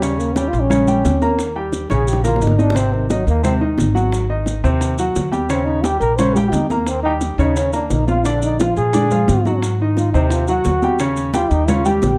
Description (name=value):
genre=Afro-Cuban jazz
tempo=175 BPM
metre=4/4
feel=straight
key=Eb mixolydian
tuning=A4 = 438 Hz
part: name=breathy trombone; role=second line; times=0.0-12.2 s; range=Eb3 to C5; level=-23 LUFS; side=equal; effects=none
part: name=warm grand piano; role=accompaniment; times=0.0-12.1 s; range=C3 to Bb5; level=-23 LUFS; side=equal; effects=none
part: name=upright bass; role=bass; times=0.0-12.2 s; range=Ab1 to Bb2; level=-22 LUFS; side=equal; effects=none
part: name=bongos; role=percussion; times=0.0-12.2 s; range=none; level=-28 LUFS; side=equal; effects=none
part: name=congas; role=percussion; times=0.0-12.2 s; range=none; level=-25 LUFS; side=equal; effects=none
part: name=maracas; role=percussion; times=0.0-12.2 s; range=none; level=-37 LUFS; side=equal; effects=none
room=light reverb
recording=dark, warm production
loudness=-17 LUFS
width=mono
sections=0.0-12.2 A section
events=trombone solo 0.0-12.2; drum fill 1.9-2.8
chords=0.0 Eb7; 2.8 Ab7; 5.5 Eb9; 8.3 Bb7; 9.6 Ab7; 11.0 Eb7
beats=| 0.03 0.37 0.71 1.05 | 1.40 1.74 2.08 2.42 | 2.77 3.11 3.45 3.79 | 4.13 4.48 4.82 5.16 | 5.51 5.85 6.19 6.54 | 6.88 7.22 7.57 7.91 | 8.25 8.60 8.94 9.28 | 9.63 9.97 10.31 10.66 | 11.00 11.35 11.69 12.03